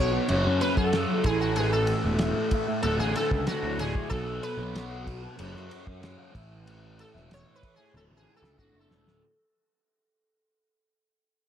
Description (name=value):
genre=psychedelic rock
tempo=94 BPM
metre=4/4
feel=straight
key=D lydian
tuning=A4 = 437 Hz
part: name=sitar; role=melody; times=0.0-9.2 s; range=F#4 to C#5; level=-30 LUFS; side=equal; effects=slapback echo
part: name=fuzz guitar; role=riff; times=0.0-9.2 s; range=D2 to B3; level=-30 LUFS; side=equal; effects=distortion, phaser
part: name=fuzz picked electric bass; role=bass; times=0.0-9.2 s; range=D1 to F#2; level=-31 LUFS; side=equal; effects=overdrive
part: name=cloth-damped thuddy drum kit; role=drums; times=0.3-9.2 s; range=kick drum, ride cymbal, snare drum, toms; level=-32 LUFS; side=equal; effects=none
room=light reverb, small room ambience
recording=none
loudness=-24 LUFS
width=side -9 dB against mid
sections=0.0-9.2 A section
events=fade-out 0.0-9.2; sitar solo 0.0-9.2; drum fill 8.0-9.2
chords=0.3 F#m; 1.3 A5; 2.9 D5; 4.1 B5; 5.4 F#5; 6.4 A5; 8.0 D5